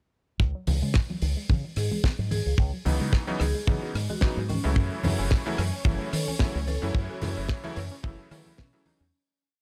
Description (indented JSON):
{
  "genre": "nu-disco, nu disco",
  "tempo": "110 BPM",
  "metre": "4/4",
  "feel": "swing 55% on 16ths",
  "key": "F# dorian",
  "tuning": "A4 = 441 Hz",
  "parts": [
    { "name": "analog pluck", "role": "arpeggios", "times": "0.4-9.1 s", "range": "D#3 to E4", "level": "-40 LUFS", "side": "equal", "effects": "none" },
    { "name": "fingered electric bass with an envelope filter", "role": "bass", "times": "0.4-9.1 s", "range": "F#1 to D#3", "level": "-31 LUFS", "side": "equal", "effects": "sidechain pumping" },
    { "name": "kick drum", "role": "drums", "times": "0.4-8.7 s", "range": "none", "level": "-26 LUFS", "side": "equal", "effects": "none" },
    { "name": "damped 70s drum kit", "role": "drums", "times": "0.7-9.0 s", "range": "hi-hat, rim click, snare drum", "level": "-38 LUFS", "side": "equal", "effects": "none" },
    { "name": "congas", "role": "percussion", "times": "0.7-9.0 s", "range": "none", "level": "-37 LUFS", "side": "equal", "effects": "none" },
    { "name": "vibraphone with medium mallets", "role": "melody", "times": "1.8-9.1 s", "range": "C#4 to A4", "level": "-40 LUFS", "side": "equal", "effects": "delay" },
    { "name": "bright electric grand piano", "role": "accompaniment", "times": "2.9-9.0 s", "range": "C#3 to E4", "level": "-36 LUFS", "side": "equal", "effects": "delay" },
    { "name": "warm studio string section", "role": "sustained chords", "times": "4.8-9.1 s", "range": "C#4 to C#5", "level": "-42 LUFS", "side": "equal", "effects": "sidechain pumping" }
  ],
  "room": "little or no reverb",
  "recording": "none",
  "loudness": "-27 LUFS",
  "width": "mono",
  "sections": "0.4-9.1 groove",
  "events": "fade-out 6.2-9.1",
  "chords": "0.4 C#m11; 4.8 F#m7"
}